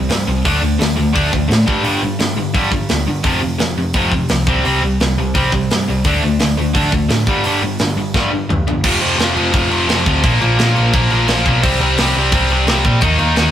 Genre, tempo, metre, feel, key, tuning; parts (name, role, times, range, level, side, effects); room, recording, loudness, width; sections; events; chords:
punk rock; 172 BPM; 4/4; straight; F major; A4 = 440 Hz
distorted electric guitar; riff; 0.0-13.5 s; F2 to Eb4; -16 LUFS; equal; overdrive
hollow-body short-scale picked electric bass; bass; 0.0-13.5 s; F1 to Bb2; -19 LUFS; equal
tight metal drum kit; drums; 0.1-13.4 s; crash cymbal, hi-hat, kick drum, snare drum, toms; -18 LUFS; equal
moderate stone room reverb, RT60 1.4 s; rough rehearsal-room recording; -13 LUFS; side -10 dB against mid
0.0-8.8 A section; 8.8-13.5 B section
drum fill 8.1-8.8
0.4 D5; 1.7 G5; 3.2 F5; 4.5 C5; 6.0 D5; 7.3 G5; 8.8 F5; 10.2 Bb5; 11.6 C5